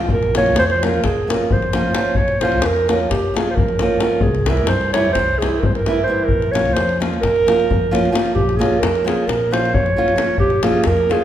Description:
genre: balkan folk, Balkan wedding band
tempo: 262 BPM (eighths)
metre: 9/8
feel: straight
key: Bb dorian sharp4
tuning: A4 = 441 Hz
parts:
  - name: nylon-string guitar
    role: accompaniment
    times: 0.0-11.2 s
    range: E3 to F4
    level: -21 LUFS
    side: right 1 dB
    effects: none
  - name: mellow clarinet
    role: melody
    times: 0.1-11.2 s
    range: G4 to Db5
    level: -18 LUFS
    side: right 2 dB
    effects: none
  - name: upright bass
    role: bass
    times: 0.1-11.1 s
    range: Bb1 to G2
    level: -24 LUFS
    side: equal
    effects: none
  - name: davul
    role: percussion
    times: 0.1-11.2 s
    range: none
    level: -21 LUFS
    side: left 2 dB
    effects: none
room: wet recital hall reverb, RT60 1.6 s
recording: recorded in a church or concert hall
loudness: -15 LUFS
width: side -11 dB against mid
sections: 0.0-8.3 A section; 8.3-11.2 B section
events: none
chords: 0.1 Bbm; 4.2 C; 6.3 Bbm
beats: | 0.09 0.32 0.55 0.78 1.01 1.24 1.47 1.70 1.93 | 2.16 2.39 2.62 2.85 3.08 3.31 3.54 3.77 4.00 | 4.23 4.46 4.68 4.91 5.14 5.37 5.60 5.83 6.06 | 6.29 6.52 6.75 6.97 7.20 7.43 7.66 7.89 8.12 | 8.35 8.57 8.80 9.03 9.26 9.48 9.71 9.94 10.16 | 10.39 10.62 10.85 11.07

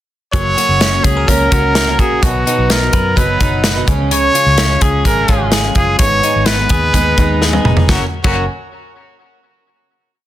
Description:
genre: jangly indie pop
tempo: 127 BPM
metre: 4/4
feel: straight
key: F# major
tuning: A4 = 440 Hz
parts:
  - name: bright trumpet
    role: melody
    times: 0.3-8.5 s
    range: F#4 to C#5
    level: -16 LUFS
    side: equal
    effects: plate reverb
  - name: fingerpicked twelve-string acoustic guitar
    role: accompaniment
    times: 0.3-8.4 s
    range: F#2 to D#4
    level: -21 LUFS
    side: right 7 dB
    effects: plate reverb
  - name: direct-recorded clean electric guitar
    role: arpeggios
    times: 0.3-8.4 s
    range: G#2 to B4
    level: -20 LUFS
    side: left 5 dB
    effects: wide subtle chorus, plate reverb
  - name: vintage muted fingered electric bass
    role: bass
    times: 0.3-8.5 s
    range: E#1 to F#2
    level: -18 LUFS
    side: equal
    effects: none
  - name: modern studio drum kit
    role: drums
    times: 0.3-8.4 s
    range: crash cymbal, hi-hat, kick drum, snare drum, toms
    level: -15 LUFS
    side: equal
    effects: none
room: moderate studio reverb, RT60 0.5 s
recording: dense, heavily limited modern master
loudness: -11 LUFS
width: side -13 dB against mid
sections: 0.3-7.9 verse; 7.9-9.8 final chord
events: drum fill 7.4-7.9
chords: 0.3 F#; 2.2 B; 3.9 C#; 6.0 G#m; 7.9 F#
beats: | 0.33 0.81 1.28 1.75 | 2.22 2.69 3.17 3.64 | 4.11 4.58 5.05 5.53 | 6.00 6.47 6.94 7.42 | 7.89 8.36

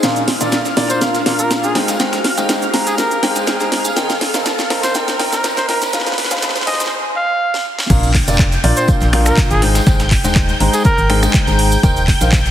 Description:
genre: piano house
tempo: 122 BPM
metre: 4/4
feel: swing 53% on 16ths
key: unclear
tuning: A4 = 440 Hz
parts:
  - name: analog string pad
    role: sustained chords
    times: 0.0-12.5 s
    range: F5 to G6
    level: -25 LUFS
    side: equal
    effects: ensemble chorus, sidechain pumping
  - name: warm concert grand piano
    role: riff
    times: 0.0-12.4 s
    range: Bb2 to Bb5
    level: -19 LUFS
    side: left 1 dB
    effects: sidechain pumping, low-pass filter, dub echo
  - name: breakbeat sampler-style drum kit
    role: drums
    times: 0.0-12.5 s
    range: hi-hat, snare drum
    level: -29 LUFS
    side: equal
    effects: none
  - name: house drum kit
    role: drums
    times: 0.0-12.5 s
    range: cabasa, crash cymbal, finger snaps, handclaps, hi-hat, snare drum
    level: -19 LUFS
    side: equal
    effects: overdrive
  - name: tambourine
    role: percussion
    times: 0.0-12.5 s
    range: none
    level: -30 LUFS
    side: right 1 dB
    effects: none
  - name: riser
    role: sound effects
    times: 0.0-6.9 s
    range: none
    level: -25 LUFS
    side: equal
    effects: none
  - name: breathy trumpet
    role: melody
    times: 0.9-11.2 s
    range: Ab4 to F5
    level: -22 LUFS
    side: right 1 dB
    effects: dub echo
  - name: organ-like FM bass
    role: bass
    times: 7.9-12.5 s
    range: Eb1 to Bb1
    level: -16 LUFS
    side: equal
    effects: sidechain pumping
  - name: electronic kick drum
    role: drums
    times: 7.9-12.4 s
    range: none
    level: -14 LUFS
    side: equal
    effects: overdrive
room: moderate lush hall reverb, RT60 2.4 s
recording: heavily compressed radio sound, high-pass filter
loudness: -13 LUFS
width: side -11 dB against mid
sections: 0.0-7.9 A section; 7.9-12.5 B section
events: build-up 0.0-7.9; drum fill 0.0-6.9, 7.5-7.9; riser 0.0-6.9; drop 7.9-12.5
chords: 0.0 Bb; 1.8 Abmaj7; 4.0 Eb6; 5.9 Fm7; 7.9 Bb; 9.6 Abmaj7; 11.8 Eb6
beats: | 0.03 0.52 1.01 1.51 | 2.00 2.49 2.98 3.47 | 3.97 4.46 4.95 5.44 | 5.93 6.42 6.92 7.41 | 7.90 8.39 8.88 9.38 | 9.87 10.36 10.85 11.34 | 11.83 12.33

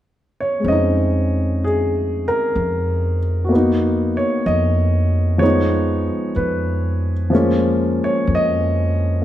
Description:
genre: jazz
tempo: 63 BPM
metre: 4/4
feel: swing 69% on 8ths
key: Bb minor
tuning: A4 = 440 Hz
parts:
  - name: warm grand piano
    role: accompaniment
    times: 0.4-9.2 s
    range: F3 to Eb5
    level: -18 LUFS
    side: equal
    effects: none
  - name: upright bass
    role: bass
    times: 0.6-9.2 s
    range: F2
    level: -20 LUFS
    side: equal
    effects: none
room: moderate large studio reverb, RT60 1.2 s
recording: none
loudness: -16 LUFS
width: side -12 dB against mid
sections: 0.0-9.2 A section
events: none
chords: 0.0 Bbm11; 3.5 Bmaj9#11/E#; 5.4 Db7; 7.3 Bbm11/F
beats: 0.65 1.60 2.55 | 3.51 4.46 5.41 6.36 | 7.32 8.27 9.22

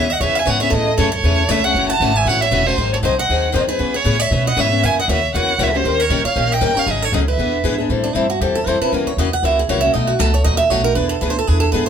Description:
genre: acoustic string swing (jazz manouche)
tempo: 234 BPM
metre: 4/4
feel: swing 56% on 8ths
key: C# minor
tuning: A4 = 444 Hz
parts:
  - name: warm violin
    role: melody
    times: 0.0-7.8 s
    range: B4 to A5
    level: -19 LUFS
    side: right 2 dB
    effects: none
  - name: picked steel-string acoustic guitar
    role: second line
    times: 0.0-11.9 s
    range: D4 to F#5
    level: -21 LUFS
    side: right 4 dB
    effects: none
  - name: picked steel-string acoustic guitar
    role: accompaniment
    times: 0.0-11.9 s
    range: B2 to A#4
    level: -20 LUFS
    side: left 5 dB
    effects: none
  - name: upright bass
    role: bass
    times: 0.0-11.9 s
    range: E1 to C#3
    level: -20 LUFS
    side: equal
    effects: none
room: wet small room ambience, RT60 0.5 s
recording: band playing live in one room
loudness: -14 LUFS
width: side -8 dB against mid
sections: 0.0-7.9 A section; 7.9-11.9 B section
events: steel-string acoustic guitar solo 7.9-11.9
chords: 0.0 C#m7; 0.7 Amaj7; 1.8 F#m9; 2.8 G#7; 3.8 C#m7; 4.8 F#7; 5.8 D#7; 6.9 G#7sus4; 7.4 E7; 7.9 Am7; 8.9 F#7; 9.9 B7; 11.0 E7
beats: 0.22 0.47 | 0.73 0.98 1.24 1.50 | 1.75 2.01 2.26 2.52 | 2.78 3.03 3.29 3.54 | 3.80 4.06 4.31 4.57 | 4.82 5.08 5.34 5.59 | 5.85 6.10 6.36 6.62 | 6.87 7.13 7.38 7.64 | 7.89 8.15 8.41 8.66 | 8.92 9.17 9.43 9.69 | 9.94 10.20 10.45 10.71 | 10.96 11.22 11.47 11.73

